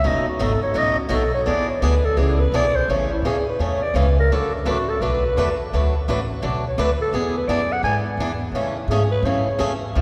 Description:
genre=acoustic string swing (jazz manouche)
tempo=169 BPM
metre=4/4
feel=swing 63% on 8ths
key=A major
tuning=A4 = 440 Hz
part: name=growling clarinet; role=melody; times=0.0-9.6 s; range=D4 to G#5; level=-25 LUFS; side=equal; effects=none
part: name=picked swing-style acoustic guitar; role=accompaniment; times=0.0-10.0 s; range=B2 to B4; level=-27 LUFS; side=equal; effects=none
part: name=upright bass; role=bass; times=0.0-10.0 s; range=F#1 to A2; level=-25 LUFS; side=equal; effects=none
room=wet cathedral reverb, RT60 4.4 s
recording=recorded in a church or concert hall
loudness=-21 LUFS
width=mono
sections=0.0-2.9 A section; 2.9-10.0 A section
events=clarinet solo 0.0-10.0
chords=0.1 B7/F#; 1.5 E7; 2.9 Amaj7; 4.3 D69; 5.7 Bm7; 7.1 E9; 8.5 Amaj7

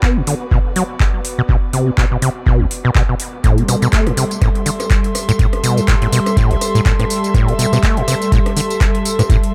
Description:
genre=acid house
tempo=123 BPM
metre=4/4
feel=swing 57% on 16ths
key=unclear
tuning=A4 = 442 Hz
part: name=acid bass, saw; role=riff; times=0.0-9.4 s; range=A1 to B3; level=-19 LUFS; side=equal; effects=overdrive, dub echo
part: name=booming analog drum machine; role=drums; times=0.0-9.5 s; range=handclaps, hi-hat, rim click, tambourine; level=-25 LUFS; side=equal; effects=overdrive, tape echo
part: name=electronic kick drum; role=drums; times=0.0-9.4 s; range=none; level=-18 LUFS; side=equal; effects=overdrive
part: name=dark chamber string section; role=texture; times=0.0-9.5 s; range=B3 to C6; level=-28 LUFS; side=equal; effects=sidechain pumping
part: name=warm analog pad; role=sustained chords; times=3.4-9.5 s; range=G3 to A4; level=-24 LUFS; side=equal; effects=chorus, sidechain pumping
room=little or no reverb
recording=echo-heavy mix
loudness=-15 LUFS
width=mono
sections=0.0-9.5 A section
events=fade-in on string section 0.0-9.5; filter sweep on acid bass 0.0-9.5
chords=0.0 Bm; 3.4 Am7

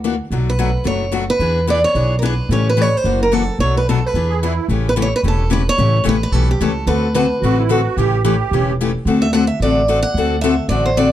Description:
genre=acoustic string swing (jazz manouche)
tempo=220 BPM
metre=4/4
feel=swing 58% on 8ths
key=A mixolydian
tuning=A4 = 441 Hz
part: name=picked steel-string acoustic guitar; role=accompaniment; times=0.0-11.1 s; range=B2 to A4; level=-19 LUFS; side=left 6 dB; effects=none
part: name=upright bass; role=bass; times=0.0-11.1 s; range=E1 to E2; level=-18 LUFS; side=right 1 dB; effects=none
part: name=picked steel-string acoustic guitar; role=melody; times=0.5-11.1 s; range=G4 to F#5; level=-19 LUFS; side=right 2 dB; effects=none
part: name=musette accordion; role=second line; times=4.3-4.7, 7.4-8.7 s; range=E4 to G#4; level=-20 LUFS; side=right 9 dB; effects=none
room=moderate club reverb, RT60 0.7 s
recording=dark, warm production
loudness=-14 LUFS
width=side -12 dB against mid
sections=0.0-4.7 A section; 4.7-11.1 A section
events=none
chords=0.3 Bm7; 1.4 E7; 2.5 A7; 3.0 F#7alt; 3.6 Bm7; 4.1 E7; 4.7 A7; 6.9 D7; 8.0 A7; 9.1 D7

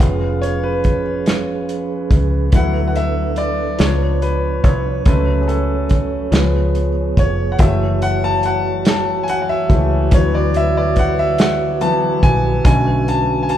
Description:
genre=slow gospel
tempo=47 BPM (dotted quarters)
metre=6/8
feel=straight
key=F# minor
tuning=A4 = 443 Hz
part: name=warm concert grand piano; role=accompaniment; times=0.0-13.6 s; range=D3 to A5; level=-19 LUFS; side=left 2 dB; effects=none
part: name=mellow tonewheel organ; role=sustained chords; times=0.0-13.6 s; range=D3 to C#5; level=-23 LUFS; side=right 2 dB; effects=fast rotary speaker
part: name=fingered electric bass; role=bass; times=0.0-13.6 s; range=E#1 to D2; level=-19 LUFS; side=equal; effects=none
part: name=warm soul drum kit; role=drums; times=0.0-13.6 s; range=hi-hat, kick drum, snare drum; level=-16 LUFS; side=equal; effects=none
room=moderate large studio reverb, RT60 1.4 s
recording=band playing live in one room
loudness=-14 LUFS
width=side -11 dB against mid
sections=0.0-13.6 A section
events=grand piano solo 0.0-13.6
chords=0.0 C#7/E#; 2.5 D6; 3.8 C#7b9; 5.1 F#m/C#; 6.3 C#7; 7.6 F#m7; 10.1 D6; 12.6 Bm7

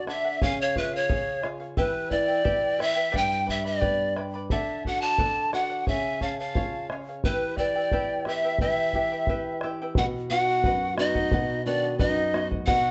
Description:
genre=andean folk, Andean ensemble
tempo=88 BPM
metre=2/4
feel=straight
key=E dorian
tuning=A4 = 439 Hz
part: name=breathy pan flute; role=melody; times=0.0-12.9 s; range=B4 to A5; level=-28 LUFS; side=equal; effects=none
part: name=bright large quena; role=second line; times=0.0-12.9 s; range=D4 to A5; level=-37 LUFS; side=equal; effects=none
part: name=charango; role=accompaniment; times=0.0-12.9 s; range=E4 to B5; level=-37 LUFS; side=equal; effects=none
part: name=flamenco guitar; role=accompaniment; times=0.0-12.9 s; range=F#2 to B4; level=-36 LUFS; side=equal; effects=none
part: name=bombo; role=percussion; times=0.1-12.8 s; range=none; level=-32 LUFS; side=equal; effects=none
room=moderate large studio reverb, RT60 0.9 s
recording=band playing live in one room, nothing above 7.9 kHz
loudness=-26 LUFS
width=mono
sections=0.0-10.0 A section; 10.0-12.9 B section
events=none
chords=0.4 C#; 1.8 Em; 3.1 G; 4.5 D; 5.9 C#; 7.2 Em; 10.0 B

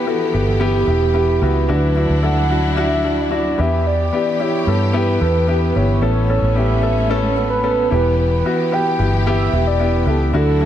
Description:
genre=piano-driven pop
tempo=111 BPM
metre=4/4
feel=straight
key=unclear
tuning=A4 = 440 Hz
part: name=mellow horn-like synth lead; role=melody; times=0.0-10.7 s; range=G4 to G5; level=-21 LUFS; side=right 2 dB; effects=chorus
part: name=warm baby grand piano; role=accompaniment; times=0.0-10.7 s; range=A2 to A4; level=-20 LUFS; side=left 2 dB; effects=none
part: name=warm symphonic string section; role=sustained chords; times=0.0-10.7 s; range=E3 to G4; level=-26 LUFS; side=right 1 dB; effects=none
part: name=vintage muted fingered electric bass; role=bass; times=0.3-10.7 s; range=E1 to G2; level=-18 LUFS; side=equal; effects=none
room=moderate lush hall reverb, RT60 2.2 s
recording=dreamy mix soaked in reverb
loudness=-14 LUFS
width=side -10 dB against mid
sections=0.0-10.7 A section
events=none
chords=0.0 Em; 1.7 Dadd9; 3.6 Em; 6.0 Aadd9; 7.9 Em

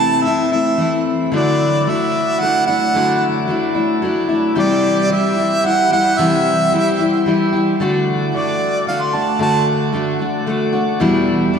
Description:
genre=acoustic folk duo or small band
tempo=112 BPM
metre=3/4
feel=straight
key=D mixolydian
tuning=A4 = 439 Hz
part: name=mellow harmonica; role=melody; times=0.0-11.6 s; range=D5 to C6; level=-18 LUFS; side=right 2 dB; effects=none
part: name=picked steel-string acoustic guitar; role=accompaniment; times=0.0-11.6 s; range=E2 to G4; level=-16 LUFS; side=left 1 dB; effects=none
part: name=bright tonewheel organ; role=sustained chords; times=1.3-11.6 s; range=F#3 to D5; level=-26 LUFS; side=right 1 dB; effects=slow rotary speaker, overdrive
room=wet church reverb, RT60 3.9 s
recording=recorded in a church or concert hall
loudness=-14 LUFS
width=side -7 dB against mid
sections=0.0-7.8 A section; 7.8-11.6 B section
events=harmonica solo 7.8-11.6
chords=0.0 Am/C; 1.3 Dadd9; 4.6 C; 7.8 D; 11.0 Em7

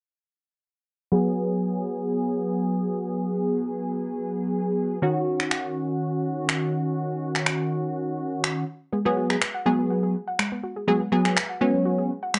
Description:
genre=dance-pop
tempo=123 BPM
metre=4/4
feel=straight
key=G# minor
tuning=A4 = 437 Hz
part: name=funky polysynth comp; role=accompaniment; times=1.1-12.1 s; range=D#3 to G#4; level=-26 LUFS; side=equal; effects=chorus, low-pass filter
part: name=electronic finger snaps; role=drums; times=5.4-12.4 s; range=none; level=-28 LUFS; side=equal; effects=none
part: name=soft round pluck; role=arpeggios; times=8.9-12.4 s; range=G#3 to F#5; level=-32 LUFS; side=equal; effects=chorus, dub echo
room=light reverb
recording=dark, warm production, nothing above 10.5 kHz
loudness=-26 LUFS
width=mono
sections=1.1-8.9 A section; 8.9-12.4 B section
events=filter sweep on analog polysynth 1.1-8.9; kick muted 7.0-8.9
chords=1.1 G#m7; 5.0 D#m7; 8.7 N.C.; 8.9 G#m7

